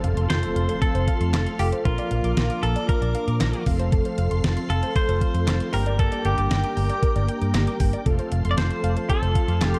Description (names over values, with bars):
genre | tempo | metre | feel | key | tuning
synth-pop | 116 BPM | 4/4 | straight | F major | A4 = 440 Hz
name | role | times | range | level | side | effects
mellow synth brass | accompaniment | 0.0-9.8 s | F3 to Bb4 | -31 LUFS | equal | chorus
ensemble organ-string | sustained chords | 0.0-9.8 s | A4 to D6 | -36 LUFS | equal | ensemble chorus
soft round pluck | arpeggios | 0.0-9.8 s | A4 to Bb6 | -36 LUFS | equal | chorus, digital delay
vintage muted fingered electric bass | bass | 0.0-9.7 s | F1 to Bb2 | -26 LUFS | equal | none
detuned 8-bit digital drum machine | drums | 0.0-9.8 s | handclaps, hi-hat, kick drum, snare drum | -27 LUFS | equal | none
impact | sound effects | 0.0-1.9 s | none | -39 LUFS | equal | none
clean electric guitar | melody | 0.3-9.8 s | F4 to D5 | -31 LUFS | equal | digital delay
room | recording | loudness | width
light reverb, digital ambience | dark, warm production | -23 LUFS | mono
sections
0.0-9.8 A section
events
impact 0.0-1.9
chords
0.0 F; 1.9 Bb; 3.7 F; 5.7 Gm; 8.1 F